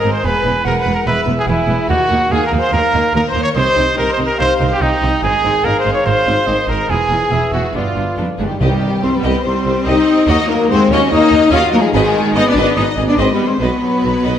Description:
cinematic, heroic adventure film score; 144 BPM; 4/4; straight; C harmonic minor from 8.6 s; A4 = 441 Hz
warm studio violin section; melody; 0.0-14.4 s; Eb4 to F5; -23 LUFS; left 3 dB
dark cor anglais; second line; 0.0-8.4 s; D5 to G#5; -22 LUFS; right 3 dB
rich symphonic violin section; second line; 0.0-14.4 s; Bb3 to Eb5; -25 LUFS; left 3 dB
mellow French horn section; sustained chords; 0.0-14.4 s; D3 to C5; -19 LUFS; left 4 dB
bright trumpet; stabs; 0.0-8.2 s; Eb4 to Db5; -17 LUFS; right 1 dB
rich symphonic double bass section; bass; 0.0-14.3 s; E1 to Eb2; -21 LUFS; right 2 dB
rich symphonic viola section; accompaniment; 0.1-14.4 s; Eb3 to E4; -21 LUFS; equal
rich symphonic cello section; bass; 0.1-14.4 s; Eb2 to F4; -22 LUFS; right 2 dB
mellow hollow concert flute; second line; 8.4-14.4 s; G5 to F6; -23 LUFS; left 2 dB
clear tuba; bass; 8.6-14.3 s; Ab1 to Eb2; -22 LUFS; right 3 dB
timpani; percussion; 8.6-9.2 s; C3; -21 LUFS; left 1 dB
wet scoring stage reverb, RT60 1.8 s; -12 LUFS; side -9 dB against mid
0.0-8.6 A section; 8.6-14.4 B section
0.3 E; 1.9 Ebm; 3.6 Cm; 5.2 Ab; 6.9 E; 7.8 G7; 8.6 Cm; 10.3 Ebm; 11.9 Abm; 13.6 B

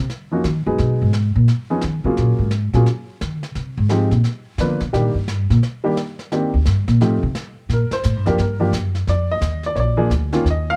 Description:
jazz piano trio; 174 BPM; 4/4; swing 64% on 8ths; A4 = 440 Hz
upright bass; bass; 0.0-10.8 s; Bb1 to Eb3; -20 LUFS; equal
jazz brush drum kit; drums; 0.1-10.8 s; brushed snare drum, hi-hat, snare drum; -35 LUFS; equal
warm upright piano; melody; 0.3-10.8 s; Eb3 to F5; -23 LUFS; equal
little or no reverb; dark, warm production; -19 LUFS; mono
0.0-7.7 A section; 7.7-10.8 A section
upright bass solo 0.0-7.7; upright piano solo 7.7-10.8
0.0 Ebm7; 0.8 Abm7; 1.5 Dbadd9; 2.2 Gbmaj9; 3.5 Fm9; 4.2 Bb; 4.9 Ebmaj7; 6.3 Cm9; 7.0 F9; 7.7 Bb5; 9.1 Ebsus2; 9.8 Bb

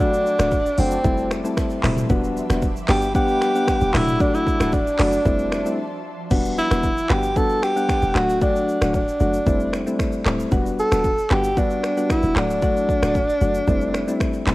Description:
afrobeats; 114 BPM; 4/4; straight; E minor; A4 = 437 Hz
breathy tenor saxophone; melody; 0.0-14.5 s; C4 to A4; -22 LUFS; equal; cassette tape, analog delay
soft electric-piano-like synth keys; accompaniment; 0.0-14.5 s; F#3 to F#5; -23 LUFS; left 2 dB; chorus, cassette tape
ethereal airy pad; sustained chords; 0.0-6.3 s; F3 to D6; -35 LUFS; right 2 dB; ensemble chorus, built-in reverb, sidechain pumping, cassette tape
short 808-style bass; bass; 0.0-14.5 s; D1 to G1; -24 LUFS; equal
afro-pop drum kit; drums; 0.1-14.5 s; crash cymbal, finger snaps, handclaps, hi-hat, kick drum, rim click, shaker, toms; -24 LUFS; equal
little or no reverb; home recording on cassette; -18 LUFS; side -19 dB against mid
0.0-6.3 A section; 6.3-14.5 B section
break 5.8-6.3
0.0 D; 1.0 Fmaj7; 2.1 Em7; 3.9 D; 5.3 Fmaj7; 6.3 Em7; 8.2 D; 9.5 Fmaj7; 10.5 Em7; 12.4 D; 13.7 Fmaj7

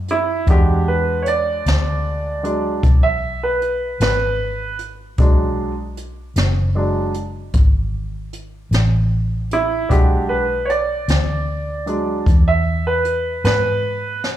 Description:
slow blues; 51 BPM (dotted quarters); 12/8; straight; E mixolydian; A4 = 440 Hz
clear concert grand piano; accompaniment; 0.0-14.2 s; F#3 to E5; -20 LUFS; right 2 dB; slapback echo
vintage muted fingered electric bass; bass; 0.0-14.4 s; F#1 to G#2; -20 LUFS; equal
jazz brush drum kit; drums; 0.1-14.4 s; hi-hat, kick drum, snare drum; -19 LUFS; left 1 dB
small room ambience; live gig heard through the venue's PA, club reverb; -16 LUFS; side -12 dB against mid
0.0-14.4 A section
grand piano solo 0.0-14.4
0.0 E7

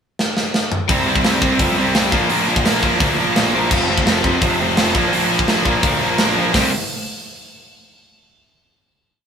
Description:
punk rock; 170 BPM; 4/4; straight; C mixolydian; A4 = 441 Hz
tight metal drum kit; drums; 0.2-6.6 s; crash cymbal, hi-hat, kick drum, snare drum, toms; -18 LUFS; equal
distorted electric guitar; riff; 0.9-6.7 s; F2 to C4; -18 LUFS; right 4 dB; distortion
tight distorted guitar; riff; 0.9-6.7 s; F2 to G4; -20 LUFS; left 8 dB; distortion
fuzz picked electric bass; bass; 0.9-6.7 s; F1 to F2; -25 LUFS; equal; overdrive
moderate studio reverb, RT60 0.6 s; band playing live in one room; -14 LUFS; side -7 dB against mid
0.0-0.9 pickup bar; 0.9-6.5 verse; 6.5-8.0 final chord
drum fill 0.2-0.9
0.0 N.C.; 0.9 C; 2.1 Bb; 3.7 F; 5.0 Bb; 6.5 C5

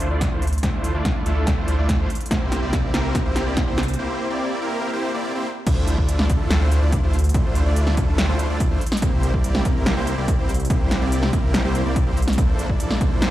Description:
future bass; 143 BPM; 4/4; half-time; D minor; A4 = 440 Hz
supersaw chords; riff; 0.0-13.3 s; A3 to D5; -26 LUFS; equal; sidechain pumping, low-pass filter, digital delay
wide detuned saw bass; bass; 0.0-13.3 s; Bb1 to D2; -22 LUFS; equal; chorus, tube saturation, sidechain pumping
big-room dance drum kit; drums; 0.0-13.3 s; crash cymbal, hi-hat, snare drum; -26 LUFS; equal; overdrive
electronic kick drum; drums; 0.2-13.1 s; -22 LUFS; equal; overdrive
light reverb, digital ambience; played on a big sound system in a bare room, large studio reverb; -18 LUFS; side -14 dB against mid
0.0-5.7 A section; 5.7-13.3 B section
build-up 0.0-5.7; drum fill 0.0-4.0; break 4.0-5.7; drop 5.7-13.3
0.0 Dm9; 2.1 C7; 5.7 Dm9; 8.8 C7; 12.4 Bbmaj9#11

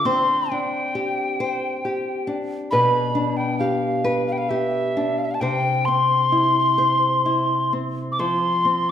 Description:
celtic folk, Celtic slow air; 66 BPM; 3/4; rubato; A4 = 437 Hz
mellow hollow wooden whistle; melody; 0.0-8.9 s; E5 to D6; -20 LUFS; left 1 dB
nylon-string guitar; accompaniment; 0.0-8.9 s; B2 to C5; -23 LUFS; equal
wet recital hall reverb, RT60 1.8 s; recorded in a church or concert hall; -19 LUFS; side -9 dB against mid
0.0-8.9 A section
0.1 Csus2; 2.7 G/B; 5.4 C; 8.2 F5

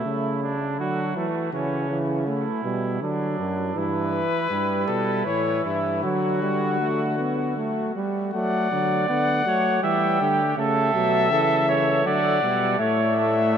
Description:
classical, imitative canzona for brass ensemble; 81 BPM; 3/4; straight; D major from 3.8 s; A4 = 442 Hz
clear flugelhorn; second line; 0.0-13.6 s; A3 to E5; -26 LUFS; right 4 dB
clear trombone; accompaniment; 0.0-13.6 s; E3 to B3; -26 LUFS; right 2 dB
mellow bass trombone; bass; 0.0-13.6 s; F#2 to F#3; -28 LUFS; equal
mellow trumpet; melody; 3.8-13.6 s; E4 to G5; -25 LUFS; left 5 dB
wet huge ambient reverb, RT60 8.2 s; in a vast, echoing space; -21 LUFS; side -8 dB against mid
0.0-8.3 A section; 8.3-13.6 B section
0.0 A; 0.8 D; 1.5 A/C#; 3.0 D; 3.8 Em/G; 5.3 A; 6.0 D; 9.8 Em; 10.6 A; 12.1 D; 12.8 A

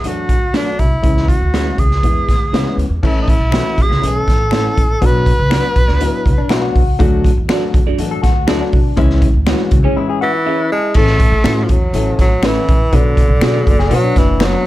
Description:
uptempo 1960s-style soul; 121 BPM; 4/4; straight; A major; A4 = 436 Hz
breathy tenor saxophone; melody; 0.0-6.5, 10.2-14.7 s; D3 to B4; -18 LUFS; right 1 dB
warm upright piano; accompaniment; 0.0-14.7 s; E3 to A5; -20 LUFS; left 4 dB
upright bass; bass; 0.0-14.5 s; F#1 to B2; -18 LUFS; equal
raw garage drum kit; drums; 0.0-14.5 s; crash cymbal, hi-hat, kick drum, snare drum; -15 LUFS; equal
electric guitar through a small old amp; stabs; 0.5-14.5 s; C#4 to E5; -24 LUFS; right 9 dB; phaser
finger snap; percussion; 3.5-14.5 s; -26 LUFS; left 8 dB
electric guitar through a small old amp; riff; 6.4-14.7 s; C#4 to A4; -22 LUFS; left 6 dB; spring reverb
small room ambience; -11 LUFS; side -15 dB against mid
0.0-3.0 A section; 3.0-11.0 B section; 11.0-14.7 C section
break 10.0-11.0; upright piano fill 10.0-11.0
0.0 D; 1.0 C#m; 2.0 E; 3.0 A; 5.0 Bm; 7.0 D; 9.0 C#m; 11.0 A; 12.9 Bm

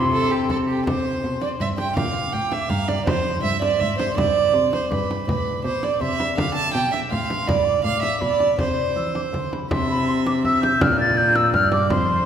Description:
classical, renaissance-style consort dance; 163 BPM; 3/4; straight; C major; A4 = 440 Hz
mellow hollow concert flute; melody; 0.0-12.3 s; Bb5 to A6; -25 LUFS; left 2 dB
rich violin; second line; 0.0-12.3 s; G4 to A5; -23 LUFS; right 4 dB
rich cello; bass; 0.0-12.3 s; F2 to E3; -25 LUFS; left 1 dB
frame drum; percussion; 0.5-12.1 s; -27 LUFS; equal
wet concert hall reverb, RT60 2.3 s; recorded in a church or concert hall; -19 LUFS; side -8 dB against mid
0.9-9.7 A section; 9.7-12.3 A section
0.0 C5; 2.0 Bb; 3.1 Fm; 4.2 Gsus4; 4.9 G; 6.4 Dm; 7.5 G; 8.6 C; 10.8 Bb

